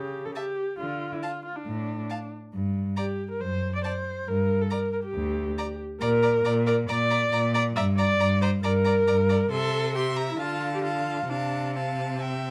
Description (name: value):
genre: quick classical-period movement for string quartet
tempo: 137 BPM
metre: 4/4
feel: straight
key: F major from 6.0 s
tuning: A4 = 441 Hz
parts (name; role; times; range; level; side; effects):
- warm viola; accompaniment; 0.0-12.5 s; C4 to E5; -29 LUFS; equal; none
- rich cello; bass; 0.0-12.5 s; D2 to D3; -30 LUFS; equal; none
- rich violin; melody; 0.4-12.5 s; G5 to C6; -38 LUFS; equal; none
- rich violin; second line; 0.4-12.5 s; D5 to F5; -36 LUFS; equal; none
room: light reverb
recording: none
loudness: -26 LUFS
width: mono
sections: 0.0-12.5 A section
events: none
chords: 0.0 N.C.; 0.8 Dm; 2.5 N.C.; 4.3 Gm; 6.0 Bb; 7.8 Gm; 9.5 C; 10.4 Dm; 11.3 F/C